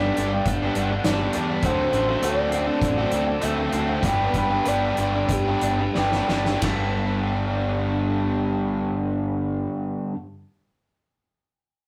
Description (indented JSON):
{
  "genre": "rock, shoegaze and dream pop",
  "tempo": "87-102 BPM",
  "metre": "4/4",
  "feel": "straight",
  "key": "G major",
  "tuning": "A4 = 440 Hz",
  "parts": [
    { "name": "breathy flute-like synth lead", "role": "melody", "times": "0.0-6.0 s", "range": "G4 to F#5", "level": "-30 LUFS", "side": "equal", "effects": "chorus" },
    { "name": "twelve-string electric guitar", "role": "arpeggios", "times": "0.0-10.1 s", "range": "F#3 to F#4", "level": "-36 LUFS", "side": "equal", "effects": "none" },
    { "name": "biting overdriven guitar", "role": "riff", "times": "0.0-10.2 s", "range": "G2 to G4", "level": "-28 LUFS", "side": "equal", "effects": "none" },
    { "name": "crunchy overdriven guitar", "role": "riff", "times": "0.0-10.2 s", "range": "G2 to B4", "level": "-31 LUFS", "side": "equal", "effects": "none" },
    { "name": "fingered electric bass", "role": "bass", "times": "0.0-9.7 s", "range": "G1 to E2", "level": "-30 LUFS", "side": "equal", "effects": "none" },
    { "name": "loose indie drum kit", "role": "drums", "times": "0.2-6.8 s", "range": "hi-hat, kick drum, ride cymbal, snare drum", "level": "-30 LUFS", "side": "equal", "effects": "none" }
  ],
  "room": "wet small room reverb, RT60 0.6 s",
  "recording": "rough rehearsal-room recording, warm saturation",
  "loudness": "-23 LUFS",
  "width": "mono",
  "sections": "0.0-6.6 A section; 6.6-9.4 B section",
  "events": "slowing down 1.6-6.6; drum fill 6.0-6.6",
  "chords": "0.0 Gmaj7; 1.6 D7; 4.0 G",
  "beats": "0.46 1.05 | 1.64 2.23 2.82 3.42 | 4.03 4.66 5.29 5.95 | 6.63 7.32 8.01 8.70"
}